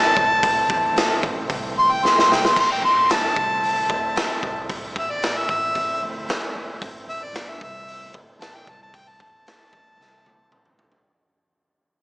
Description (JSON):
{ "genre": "blues rock power trio and southern rock", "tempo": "113 BPM", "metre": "4/4", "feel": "straight", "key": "A minor", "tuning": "A4 = 440 Hz", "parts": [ { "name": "clear harmonica", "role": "melody", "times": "0.0-10.8 s", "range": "D5 to C6", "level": "-20 LUFS", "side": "equal", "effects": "overdrive" }, { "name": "overdriven tonewheel organ", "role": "sustained chords", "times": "0.0-11.0 s", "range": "E3 to E4", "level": "-33 LUFS", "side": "right 1 dB", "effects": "fast rotary speaker" }, { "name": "upright bass", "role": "bass", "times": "0.0-11.0 s", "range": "G1 to E2", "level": "-39 LUFS", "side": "equal", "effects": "none" }, { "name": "raw garage drum kit", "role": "drums", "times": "0.2-11.0 s", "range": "crash cymbal, hi-hat, kick drum, snare drum, toms", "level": "-24 LUFS", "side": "equal", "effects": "none" } ], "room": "moderate studio reverb, RT60 0.6 s", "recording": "small speaker sound", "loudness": "-18 LUFS", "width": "side -26 dB against mid", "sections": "0.0-11.1 A section", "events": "fade-out 0.0-11.1; harmonica solo 0.0-11.1; drum fill 2.0-2.6, 10.0-11.1", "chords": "0.0 Am", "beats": "| 0.44 0.97 1.51 2.04 | 2.57 3.10 3.63 4.17 | 4.70 5.23 5.76 6.29 | 6.82 7.35 7.88 8.41 | 8.94 9.46 9.99 10.52" }